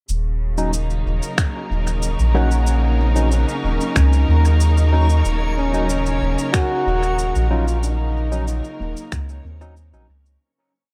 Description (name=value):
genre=ambient dub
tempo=93 BPM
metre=4/4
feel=straight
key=Eb dorian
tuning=A4 = 439 Hz
part: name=rich studio string section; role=sustained chords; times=0.1-10.4 s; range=Db3 to Bb4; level=-29 LUFS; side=equal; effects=none
part: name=soft dub sub bass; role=bass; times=0.1-10.4 s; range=Eb1 to Eb2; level=-20 LUFS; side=equal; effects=none
part: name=electronic shaker and finger snaps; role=drums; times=0.1-10.4 s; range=none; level=-31 LUFS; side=equal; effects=dub echo
part: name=backwards swelling texture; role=texture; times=1.2-10.4 s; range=Db4 to Db6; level=-35 LUFS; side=equal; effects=built-in reverb
part: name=barky tine electric piano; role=stabs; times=0.6-10.1 s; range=Gb3 to Eb4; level=-30 LUFS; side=equal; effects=low-pass filter, dub echo
part: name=electronic kick drum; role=drums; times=1.4-9.3 s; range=none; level=-23 LUFS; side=equal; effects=none
part: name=handpan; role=arpeggios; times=2.3-10.9 s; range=Bb3 to Gb5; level=-34 LUFS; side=equal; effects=dub echo
part: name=warm trombone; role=melody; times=5.6-9.1 s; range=Db4 to Gb4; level=-26 LUFS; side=equal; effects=vintage 12-bit sampler grit, dub echo
room=light reverb, studio ambience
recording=none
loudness=-19 LUFS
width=mono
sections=0.1-10.4 groove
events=filter sweep on tine electric piano 0.1-10.4; fade-out 7.0-10.4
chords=0.1 Ebm7